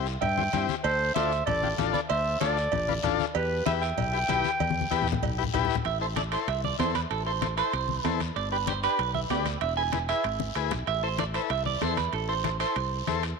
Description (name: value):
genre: latin, cumbia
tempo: 192 BPM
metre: 4/4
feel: straight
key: A minor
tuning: A4 = 439 Hz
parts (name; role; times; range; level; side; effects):
- combo organ; accompaniment; 0.0-13.2 s; C4 to D5; -31 LUFS; left 12 dB; none
- fingered electric bass; bass; 0.0-13.3 s; E1 to G2; -32 LUFS; equal; none
- guiro; percussion; 0.1-13.4 s; none; -41 LUFS; left 14 dB; none
- clear clarinet; melody; 0.2-5.5 s; B4 to G5; -29 LUFS; equal; none
- semi-hollow electric guitar; second line; 0.2-13.2 s; G4 to G#5; -30 LUFS; right 11 dB; none
- congas; percussion; 0.2-13.2 s; none; -34 LUFS; left 8 dB; none
- cowbell and timbales; percussion; 0.2-13.4 s; none; -36 LUFS; right 15 dB; none
room: moderate plate reverb, RT60 3.4 s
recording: 1960s-style stereo with parts hard left and right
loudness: -25 LUFS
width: side -4 dB against mid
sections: 0.0-5.9 A section; 5.9-13.4 B section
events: drum fill 4.6-5.9, 10.4-10.9; clean electric guitar solo 5.9-13.4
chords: 0.0 C; 0.8 Dm7; 3.4 Em; 5.9 Am; 8.4 G; 9.6 E; 10.9 Am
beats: 0.22 0.54 | 0.85 1.16 1.47 1.79 | 2.10 2.41 2.73 3.04 | 3.35 3.66 3.98 4.29 | 4.60 4.92 5.23 5.54 | 5.85 6.17 6.48 6.79 | 7.11 7.42 7.73 8.05 | 8.36 8.68 8.99 9.30 | 9.62 9.93 10.24 10.56 | 10.87 11.19 11.50 11.81 | 12.13 12.44 12.76 13.07 | 13.39